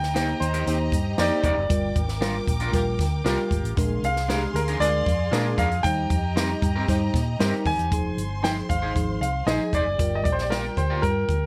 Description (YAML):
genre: uptempo 1960s-style soul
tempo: 116 BPM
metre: 4/4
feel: straight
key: F dorian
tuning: A4 = 444 Hz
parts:
  - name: clear grand piano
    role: melody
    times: 0.0-11.5 s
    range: Bb4 to Ab5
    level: -29 LUFS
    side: equal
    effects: none
  - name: warm studio string section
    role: second line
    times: 0.0-11.5 s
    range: G4 to D6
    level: -37 LUFS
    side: equal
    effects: none
  - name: hollow-body short-scale fingered electric bass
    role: bass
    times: 0.0-11.5 s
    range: F1 to Bb2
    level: -30 LUFS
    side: equal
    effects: none
  - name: compact cocktail drum kit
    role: drums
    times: 0.0-11.4 s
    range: hi-hat, kick drum, snare drum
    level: -29 LUFS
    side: equal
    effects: none
  - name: mellow tine electric piano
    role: accompaniment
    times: 0.1-11.3 s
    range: F3 to C5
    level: -32 LUFS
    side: equal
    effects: none
  - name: electric guitar at the edge of break-up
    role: stabs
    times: 0.1-11.0 s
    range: C4 to D5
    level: -34 LUFS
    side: equal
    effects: lush chorus
  - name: warm horn section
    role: second line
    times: 0.7-7.9 s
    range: C4 to Bb4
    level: -36 LUFS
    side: equal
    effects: none
room: light reverb, small room reverb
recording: vinyl crackle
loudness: -24 LUFS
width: mono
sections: 0.0-7.9 A section; 7.9-11.5 B section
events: none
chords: 0.0 Cm7; 1.7 Gm7; 3.8 Bb7; 5.8 Eb6; 7.9 Fm7; 10.0 Gm7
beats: 0.16 0.67 1.19 | 1.71 2.22 2.74 3.25 | 3.77 4.29 4.80 5.32 | 5.84 6.36 6.88 7.39 | 7.91 8.43 8.95 9.47 | 9.99 10.51 11.03